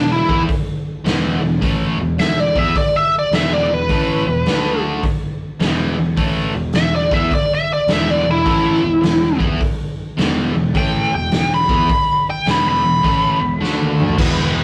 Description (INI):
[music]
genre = blues rock power trio and southern rock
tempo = 105 BPM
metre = 4/4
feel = swing 65% on 8ths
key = unclear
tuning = A4 = 440 Hz
[part]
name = biting lead guitar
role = melody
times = 0.0-14.2 s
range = D4 to B5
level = -19 LUFS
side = equal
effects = overdrive
[part]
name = distorted electric guitar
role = riff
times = 0.0-14.6 s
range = E2 to E4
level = -24 LUFS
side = equal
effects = distortion
[part]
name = fuzz picked electric bass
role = bass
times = 0.0-14.6 s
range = E1 to E2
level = -24 LUFS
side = equal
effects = overdrive
[part]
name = raw garage drum kit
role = drums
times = 0.3-14.5 s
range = crash cymbal, hi-hat, kick drum, snare drum, toms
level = -22 LUFS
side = equal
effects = none
[part]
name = overdriven tonewheel organ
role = sustained chords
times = 14.2-14.6 s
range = B3 to B4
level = -27 LUFS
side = equal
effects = slow rotary speaker, chorus vibrato
[sound]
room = moderate studio reverb, RT60 0.5 s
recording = rough rehearsal-room recording, warm saturation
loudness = -17 LUFS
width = mono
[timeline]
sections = 0.0-14.2 A section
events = drum fill 13.6-14.2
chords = 0.0 E5; 4.5 D5; 5.6 E5; 13.6 D5